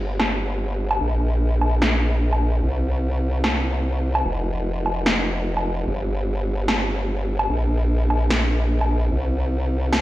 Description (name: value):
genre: heavy wobble dubstep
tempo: 148 BPM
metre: 4/4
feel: half-time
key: G minor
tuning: A4 = 440 Hz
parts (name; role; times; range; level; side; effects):
- formant-sweep wobble bass; bass; 0.0-10.0 s; F1 to C2; -21 LUFS; equal; chorus, overdrive
- electronic snare drum and woodblock; drums; 0.2-10.0 s; none; -24 LUFS; equal; low-pass filter on hats, low-pass filter on snare, low-pass filter on perc, low-pass filter on cymbals, low-pass filter on room
room: light reverb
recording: played on a big sound system in a bare room, large studio reverb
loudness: -20 LUFS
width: side -16 dB against mid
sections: 0.0-10.0 A section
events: none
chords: none